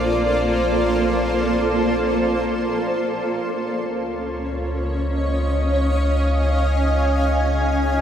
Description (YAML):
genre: ambient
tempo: free time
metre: none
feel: none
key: unclear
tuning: A4 = 440 Hz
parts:
  - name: granular cloud pad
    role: sustained chords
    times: 0.0-8.0 s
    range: Bb3 to Ab5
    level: -20 LUFS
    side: equal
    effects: built-in reverb
  - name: deep rumbling drone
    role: bass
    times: 0.0-8.0 s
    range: Bb1 to Db2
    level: -23 LUFS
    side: equal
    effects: built-in reverb
room: wet huge ambient reverb, RT60 8.2 s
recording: none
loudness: -18 LUFS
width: side -9 dB against mid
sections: 0.0-8.0 A section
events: none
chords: 0.0 Bbmaj7; 3.2 Dbadd9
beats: free time